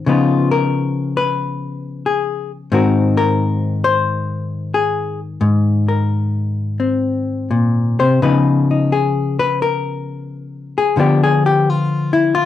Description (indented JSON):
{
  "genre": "solo jazz",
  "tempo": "88 BPM",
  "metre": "4/4",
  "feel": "swing 68% on 8ths, rubato",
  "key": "unclear",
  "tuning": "A4 = 440 Hz",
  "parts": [
    { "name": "hollow-body jazz guitar", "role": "solo", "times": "0.0-12.5 s", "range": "Ab2 to C5", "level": "-15 LUFS", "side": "left 3 dB", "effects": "none" }
  ],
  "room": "wet studio reverb, RT60 0.5 s",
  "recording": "home recording on cassette",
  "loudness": "-15 LUFS",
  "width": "side -12 dB against mid",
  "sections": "0.0-12.5 A section",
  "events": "hollow-body jazz guitar solo 0.0-12.5",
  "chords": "0.1 Db9; 2.7 Ab9; 8.2 Db9; 11.0 Dm69",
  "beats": "| 0.06 0.72 1.38 2.04 | 2.71 3.38 4.05 4.72 | 5.41 6.09 6.79 7.51 | 8.22 8.92 9.61 10.30 | 10.98 11.65 12.33"
}